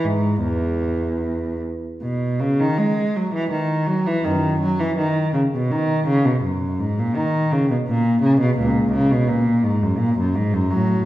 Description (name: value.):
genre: classical, baroque-style suite movement for unaccompanied cello.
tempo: 83 BPM.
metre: 3/4.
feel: rubato.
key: unclear.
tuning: A4 = 440 Hz.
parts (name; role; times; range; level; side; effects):
rich cello; solo; 0.0-11.1 s; C#2 to G#3; -18 LUFS; equal; none.
room: wet recital hall reverb, RT60 1.3 s.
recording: heard from further back in the room.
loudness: -18 LUFS.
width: side -15 dB against mid.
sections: 0.0-2.0 A section; 2.0-11.1 A section.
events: none.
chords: none.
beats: 0.45 1.24 | 2.03 2.79 3.52 | 4.25 4.98 5.71 | 6.43 7.15 7.87 | 8.59 9.29 10.00 | 10.72.